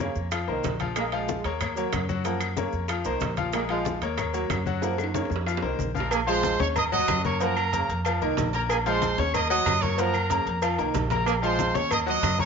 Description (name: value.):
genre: latin, salsa.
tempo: 186 BPM.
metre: 4/4.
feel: straight.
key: Bb minor.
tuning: A4 = 439 Hz.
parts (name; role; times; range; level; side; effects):
clear trombone section; second line; 0.0-12.3 s; Db3 to Bb3; -32 LUFS; right 11 dB; none.
bright baby grand piano; accompaniment; 0.0-12.5 s; F3 to Db6; -29 LUFS; left 9 dB; none.
upright bass; bass; 0.0-12.5 s; Bb1 to Gb2; -31 LUFS; right 1 dB; none.
congas; percussion; 0.0-12.5 s; none; -34 LUFS; left 5 dB; none.
bongos and cowbell; percussion; 0.2-12.4 s; none; -37 LUFS; left 8 dB; none.
maracas; percussion; 0.2-12.5 s; none; -44 LUFS; right 16 dB; none.
claves; percussion; 0.3-12.4 s; none; -37 LUFS; left 10 dB; none.
timbales and agogo bells; percussion; 0.3-12.5 s; none; -32 LUFS; right 11 dB; none.
bright trumpet section; melody; 6.0-12.5 s; Ab4 to Eb6; -27 LUFS; right 2 dB; none.
room: moderate echo chamber reverb, RT60 1.4 s, small room ambience.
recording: 1960s-style stereo with parts hard left and right, nothing above 7.5 kHz.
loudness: -23 LUFS.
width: side -6 dB against mid.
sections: 0.0-6.1 A section; 6.1-12.5 B section.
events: drum fill 4.8-6.1, 10.8-11.3.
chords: 0.3 F7sus4; 1.0 Bbm7; 1.6 Ebm7; 2.2 Gbmaj7; 2.9 F7sus4; 3.5 Bbm7; 4.2 Ebm7; 4.8 Gbmaj7; 5.5 F7sus4; 6.1 Bbm7; 6.8 Ebm7; 7.4 Gbmaj7; 8.0 F7sus4; 8.7 Bbm7; 9.3 Ebm7; 10.0 Gbmaj7; 10.6 F7sus4; 11.3 Bbm7; 11.9 Ebm.